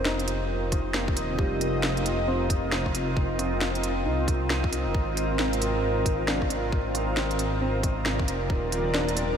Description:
future garage; 135 BPM; 4/4; swing 62% on 16ths; F dorian; A4 = 444 Hz
felt-muted upright piano; accompaniment; 0.0-9.4 s; G3 to C5; -35 LUFS; left 1 dB; sidechain pumping, ping-pong delay
granular cloud pad; sustained chords; 0.0-9.4 s; C4 to Eb5; -28 LUFS; equal; built-in reverb, sidechain pumping
dark detuned saw bass; bass; 0.0-9.4 s; Eb1 to C2; -30 LUFS; equal; sidechain pumping
drifting glass-harmonics texture; texture; 0.0-9.4 s; Eb4; -36 LUFS; right 3 dB; chorus, built-in reverb
organic electronic drum kit; drums; 0.1-9.3 s; hi-hat, rim click, snare drum; -32 LUFS; equal
electronic kick drum; drums; 0.7-8.6 s; -28 LUFS; equal
moderate huge ambient reverb, RT60 4.1 s; dreamy mix soaked in reverb; -24 LUFS; side -8 dB against mid
0.0-9.4 A section
0.0 Fsus2; 4.9 Ab6; 8.5 Eb5

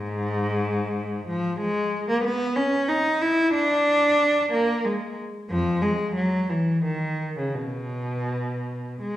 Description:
classical, baroque-style suite movement for unaccompanied cello; 79-94 BPM; 3/4; rubato; A4 = 440 Hz
rich cello; solo; 0.0-9.2 s; E#2 to E4; -22 LUFS; equal
wet recital hall reverb, RT60 1.4 s; recorded in a church or concert hall; -22 LUFS; side -13 dB against mid
0.0-9.2 A section

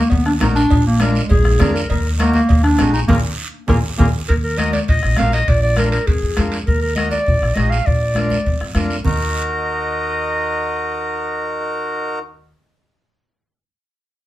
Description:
latin, cumbia; 201 BPM; 4/4; straight; Eb harmonic minor; A4 = 437 Hz
warm clarinet; melody; 0.0-12.2 s; Ab3 to F5; -20 LUFS; equal; plate reverb
accordion; accompaniment; 0.0-12.2 s; D4 to Bb4; -23 LUFS; equal
upright bass; bass; 0.1-12.5 s; Bb1 to F2; -19 LUFS; equal
bombo; percussion; 0.1-9.1 s; -19 LUFS; equal
cowbell and timbales; percussion; 0.1-6.7 s; -28 LUFS; right 4 dB
guiro; percussion; 0.1-9.1 s; -31 LUFS; right 4 dB
congas; percussion; 0.4-9.1 s; -24 LUFS; left 2 dB
mellow clarinet; second line; 1.3-4.1 s; Ab4 to Bb4; -23 LUFS; left 2 dB
wet small room reverb, RT60 0.5 s; heard from further back in the room; -15 LUFS; side -15 dB against mid
0.0-4.3 A section; 4.3-9.1 B section; 9.1-11.4 C section
band accent 3.1-4.3; drum fill 3.4-4.3
0.0 Ebm; 0.7 Bb7; 1.9 Ebm; 3.1 Bb5; 4.3 Ebm; 5.5 Bb7; 6.7 Ebm; 7.9 Bb; 9.1 Ebm

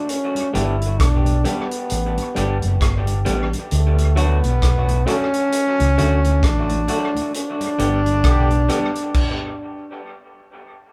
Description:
roots reggae; 66 BPM; 4/4; swing 59% on 16ths; A4 = 440 Hz
clear trombone; melody; 0.0-10.0 s; A3 to E4; -25 LUFS; equal
vintage drum kit; drums; 0.1-9.4 s; crash cymbal, hi-hat, kick drum, rim click; -25 LUFS; equal; dub echo
tonewheel organ; accompaniment; 0.3-8.8 s; D2 to B3; -33 LUFS; equal; overdrive, stopped rotary speaker, dub echo
electric guitar through a small old amp; accompaniment; 0.5-8.9 s; F#3 to G4; -30 LUFS; equal; dub echo
fingered electric bass; bass; 0.6-8.7 s; F#1 to D2; -21 LUFS; equal
warm horn section; second line; 8.2-8.5 s; D3 to G4; -28 LUFS; equal
moderate studio reverb, RT60 0.6 s; band playing live in one room; -19 LUFS; mono
0.0-10.9 A section
band accent 7.3-10.9; stop 9.1-10.9
0.1 G; 3.7 D; 7.3 G

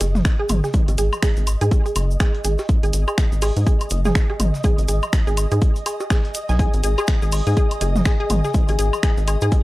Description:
minimal techno; 123 BPM; 4/4; swing 59% on 16ths; A4 = 439 Hz
resonant blip pluck; riff; 0.0-9.4 s; G#4 to G#5; -26 LUFS; equal; chorus, cassette tape, sidechain pumping, analog delay
rubbery square bass; bass; 0.0-9.5 s; F#1 to G#2; -19 LUFS; equal; sidechain pumping
dusty soul sampler-style drum kit; drums; 0.0-9.6 s; hi-hat, snare drum; -40 LUFS; right 1 dB
house drum kit; drums; 0.0-9.5 s; finger snaps, hi-hat; -28 LUFS; right 1 dB
cabasa; percussion; 0.0-9.6 s; -36 LUFS; left 3 dB
electronic cowbell, toms and woodblock; percussion; 0.0-9.6 s; -26 LUFS; equal; overdrive, tape echo
flickering grainy texture; texture; 0.0-9.6 s; D#5; -33 LUFS; right 2 dB; built-in reverb, sidechain pumping
electronic kick drum; drums; 0.3-9.6 s; -18 LUFS; equal
little or no reverb; dry, gritty hardware recording; -17 LUFS; side -18 dB against mid
0.0-9.6 A section
0.0 G#5

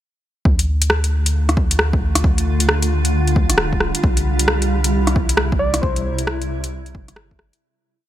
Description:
future garage; 134 BPM; 4/4; swing 63% on 16ths; D minor; A4 = 442 Hz
granular cloud pad; sustained chords; 1.2-7.6 s; C3 to F4; -23 LUFS; equal; built-in reverb, sidechain pumping
soft dub sub bass; bass; 0.5-7.5 s; D1 to D2; -20 LUFS; equal; sidechain pumping
electronic kick drum; drums; 0.5-7.4 s; -19 LUFS; equal; overdrive, studio reverb
deep house drum kit; drums; 0.6-7.6 s; hi-hat, rim click; -20 LUFS; equal; overdrive, studio reverb
soft struck synth lead; melody; 5.6-6.2 s; C5 to D5; -24 LUFS; right 1 dB; chorus, cassette tape, dub echo
little or no reverb; -15 LUFS; side -12 dB against mid
0.5-7.6 groove
fade-out 5.2-7.6
0.5 Dm; 4.0 C

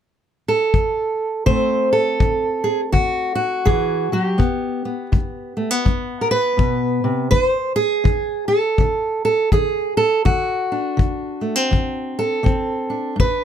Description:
acoustic country blues, solo or duo; 82 BPM; 4/4; swing 62% on 8ths; D mixolydian; A4 = 440 Hz
fingerpicked steel-string acoustic guitar; melody; 0.5-13.4 s; G2 to C5; -18 LUFS; right 1 dB
kick drum; drums; 0.7-13.4 s; -18 LUFS; left 2 dB
little or no reverb; close, detailed microphones; -17 LUFS; side -9 dB against mid
0.0-1.5 A section; 1.5-13.4 B section
0.0 N.C.; 1.5 D7; 4.4 G; 7.3 D7

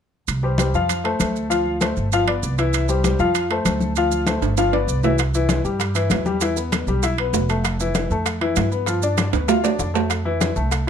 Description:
latin, salsa; 196 BPM; 4/4; straight; C major; A4 = 440 Hz
upright bass; bass; 0.3-10.9 s; F1 to G2; -23 LUFS; right 1 dB
congas; percussion; 0.3-10.9 s; -27 LUFS; left 3 dB
maracas; percussion; 0.3-10.9 s; -32 LUFS; right 13 dB
timbales; percussion; 0.3-10.9 s; -24 LUFS; right 11 dB
clear upright piano; accompaniment; 0.4-10.9 s; E3 to F5; -22 LUFS; left 3 dB
bongos; percussion; 5.2-10.9 s; -32 LUFS; left 10 dB
light reverb; close, detailed microphones; -18 LUFS; side -8 dB against mid
0.3-5.2 A section; 5.2-10.9 B section
drum fill 4.4-5.2, 9.3-10.1
0.3 C5; 0.9 F; 1.5 Dm7; 2.1 G7; 2.7 C; 3.4 F; 4.0 Dm7; 4.6 G7; 5.2 C; 6.4 Fmaj7; 8.9 G7; 10.1 Fmaj7

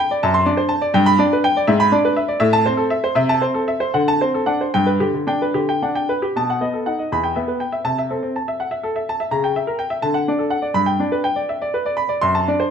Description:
classical, baroque-style suite movement for grand piano; 72-84 BPM (dotted quarters); 6/8; rubato; G major; A4 = 441 Hz
bright baby grand piano; solo; 0.0-12.7 s; E2 to C6; -16 LUFS; equal
moderate recital hall reverb, RT60 1.4 s; minimal, uncompressed stereo recording; -17 LUFS; side -7 dB against mid
0.0-6.4 A section; 6.4-12.7 A section
0.2 D7/F#; 1.0 G; 1.7 E7/G#; 2.4 Am; 3.2 Am/C; 3.9 D7; 4.7 G; 6.4 B7; 7.1 Em; 7.9 Am/C; 9.3 C#dim7; 10.1 D; 10.8 G

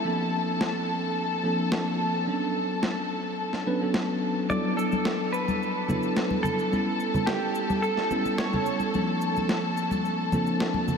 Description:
nu-disco, nu disco; 108 BPM; 4/4; straight; A4 = 440 Hz
bell-like tine electric piano; accompaniment; 0.0-11.0 s; F3 to B4; -28 LUFS; equal; analog chorus, low-pass filter, analog delay
rich studio string section; sustained chords; 0.0-11.0 s; A4 to A5; -31 LUFS; left 2 dB; vintage 12-bit sampler grit
electronic snare drum; drums; 0.6-10.7 s; -33 LUFS; equal; overdrive, studio reverb
direct-recorded clean electric guitar; melody; 4.5-8.8 s; G4 to D5; -32 LUFS; right 2 dB; lush chorus, analog delay
congas and cabasa; percussion; 4.5-11.0 s; -31 LUFS; left 2 dB
wet huge ambient reverb, RT60 8.8 s; dreamy mix soaked in reverb; -24 LUFS; side -6 dB against mid
0.0-11.0 A section
0.1 Bbmaj9; 2.3 Bm9; 4.5 D69; 6.7 A7; 8.9 Bbmaj9

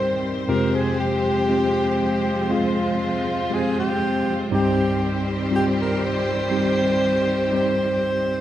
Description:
pop; 60 BPM; 4/4; straight; C minor; A4 = 443 Hz
clear alto saxophone; melody; 0.0-8.4 s; F4 to C5; -24 LUFS; equal; plate reverb
barky tine electric piano; accompaniment; 0.0-8.4 s; C2 to Bb4; -23 LUFS; equal; medium stereo tremolo
warm studio string section; sustained chords; 0.0-8.4 s; Eb3 to C5; -25 LUFS; equal; plate reverb
wet studio reverb, RT60 0.6 s; rough home demo mix; -19 LUFS; side -12 dB against mid
0.0-8.4 A section
0.5 Fmadd9; 4.5 Cm

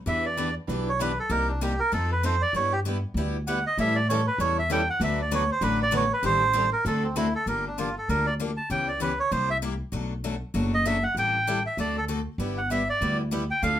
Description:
acoustic string swing (jazz manouche); 195 BPM; 4/4; swing 59% on 8ths; A4 = 441 Hz
melodica; melody; 0.1-13.8 s; C4 to A5; -25 LUFS; right 2 dB
picked steel-string acoustic guitar; accompaniment; 0.1-13.8 s; B2 to B4; -31 LUFS; left 5 dB
picked swing-style acoustic guitar; accompaniment; 0.1-7.3, 12.4-13.8 s; C3 to B4; -34 LUFS; right 6 dB
upright bass; bass; 0.1-13.8 s; F#1 to A2; -29 LUFS; equal
moderate studio reverb, RT60 0.5 s; minimal, uncompressed stereo recording; -23 LUFS; side -11 dB against mid
0.0-7.5 A section; 7.5-13.8 A section
melodica solo 0.0-13.8
0.1 Em7; 1.3 Cm7; 1.9 F7; 2.5 G6; 3.8 A7; 5.0 D6; 6.2 Am7b5; 6.8 D7; 7.5 Gm7; 8.7 C#m7b5; 9.3 C7; 9.9 Bm7; 11.2 Am7; 11.8 D7; 12.4 G6

